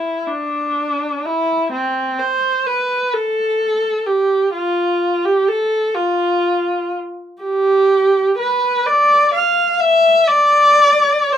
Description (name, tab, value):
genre	classical, free, expressive piece for unaccompanied viola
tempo	42 BPM (dotted quarters)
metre	6/8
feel	rubato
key	A minor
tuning	A4 = 440 Hz
part	rich viola	solo	0.0-11.4 s	C4 to F5	-14 LUFS	equal	none
room	light reverb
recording	minimal, uncompressed stereo recording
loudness	-14 LUFS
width	side -10 dB against mid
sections	0.0-11.4 A section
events	none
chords	none